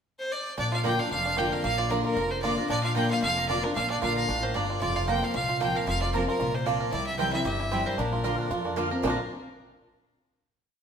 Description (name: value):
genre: bluegrass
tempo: 227 BPM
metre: 4/4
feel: swing 55% on 8ths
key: Bb major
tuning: A4 = 440 Hz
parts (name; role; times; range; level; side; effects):
- clear fiddle; melody; 0.2-8.8 s; Bb4 to G5; -29 LUFS; equal; none
- picked steel-string acoustic guitar; accompaniment; 0.6-9.2 s; F2 to F4; -31 LUFS; left 3 dB; none
- bluegrass banjo; arpeggios; 0.6-9.2 s; Bb3 to Bb4; -32 LUFS; right 4 dB; none
- upright bass; bass; 0.6-9.2 s; F1 to F2; -33 LUFS; left 1 dB; none
- mandolin; stabs; 0.8-9.2 s; Bb3 to C6; -34 LUFS; right 5 dB; none
room: wet stone room reverb, RT60 1.3 s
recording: band playing live in one room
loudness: -25 LUFS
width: side -7 dB against mid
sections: 0.0-0.6 pickup bar; 0.6-9.0 A section; 9.0-10.1 final chord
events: none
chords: 0.0 N.C.; 0.6 Bb; 4.8 Fsus4; 6.9 C; 8.0 Bbadd9